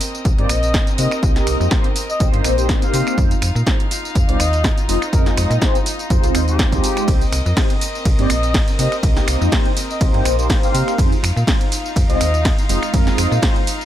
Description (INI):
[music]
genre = filtered disco house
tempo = 123 BPM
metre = 4/4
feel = swing 54% on 16ths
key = C minor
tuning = A4 = 440 Hz
[part]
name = warm studio violin section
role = sustained chords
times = 0.0-13.8 s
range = C4 to F5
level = -27 LUFS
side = left 2 dB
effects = sidechain pumping
[part]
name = punchy analog drum machine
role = drums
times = 0.0-13.8 s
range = finger snaps, hi-hat, ride cymbal, snare drum, tambourine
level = -23 LUFS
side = right 1 dB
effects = sidechain pumping on hats, sidechain pumping on perc, sidechain pumping on cymbals
[part]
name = slap-like FM bass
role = bass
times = 0.2-13.4 s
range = F1 to C3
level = -19 LUFS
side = equal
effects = sidechain pumping
[part]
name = electronic kick drum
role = drums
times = 0.2-13.5 s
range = none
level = -18 LUFS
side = equal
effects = none
[part]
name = dark trumpet section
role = melody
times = 0.4-13.1 s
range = G4 to F5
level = -25 LUFS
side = left 1 dB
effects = sidechain pumping
[part]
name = mellow synth brass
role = accompaniment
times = 0.4-13.6 s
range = Ab3 to Eb5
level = -22 LUFS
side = equal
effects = chorus, phaser, sidechain pumping
[sound]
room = little or no reverb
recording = none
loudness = -14 LUFS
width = side -12 dB against mid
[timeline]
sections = 0.0-13.8 A section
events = none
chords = 0.0 Cm7; 3.2 Fm7; 7.1 Cm7; 11.0 Fm7